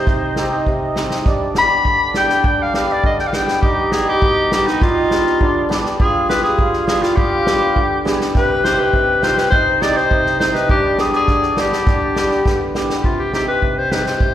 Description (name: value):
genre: klezmer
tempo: 102 BPM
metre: 2/4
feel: straight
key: G phrygian dominant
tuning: A4 = 440 Hz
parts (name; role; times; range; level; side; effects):
- bright clarinet; melody; 0.0-14.3 s; Eb4 to B5; -17 LUFS; left 2 dB; plate reverb
- mellow accordion; second line; 0.0-13.0 s; B3 to Ab4; -22 LUFS; right 3 dB; plate reverb, slapback echo
- hammered dulcimer; accompaniment; 0.0-14.3 s; B2 to G4; -21 LUFS; equal; plate reverb, slapback echo
- unplugged drum kit; drums; 0.1-14.3 s; kick drum, snare drum; -19 LUFS; equal; none
room: moderate club reverb, RT60 0.8 s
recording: live gig heard through the venue's PA, recital hall reverb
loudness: -14 LUFS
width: side -11 dB against mid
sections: 0.0-3.6 A section; 3.6-13.0 B section; 13.0-14.3 C section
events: clarinet solo 0.0-3.6; drum fill 12.5-13.0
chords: 0.0 Cm; 1.3 G; 8.3 Cm; 10.7 G; 13.0 Cm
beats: | 0.07 0.66 | 1.26 1.85 | 2.44 3.04 | 3.63 4.22 | 4.81 5.40 | 5.99 6.58 | 7.17 7.76 | 8.35 8.94 | 9.52 10.11 | 10.70 11.28 | 11.87 12.45 | 13.04 13.62 | 14.21